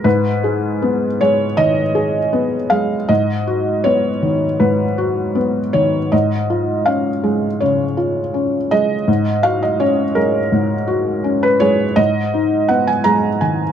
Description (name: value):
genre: neoclassical minimalist piano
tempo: 81 BPM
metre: 4/4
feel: rubato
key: G# dorian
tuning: A4 = 443 Hz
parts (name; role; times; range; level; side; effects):
- felt-muted upright piano; solo; 0.0-13.7 s; G#2 to A#5; -14 LUFS; equal; none
room: light reverb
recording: dark, warm production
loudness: -14 LUFS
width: side -9 dB against mid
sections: 0.0-13.7 A section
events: none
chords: 0.0 G#m; 3.1 B/G#; 6.1 C#/G#; 9.1 F#/G#; 12.0 G#m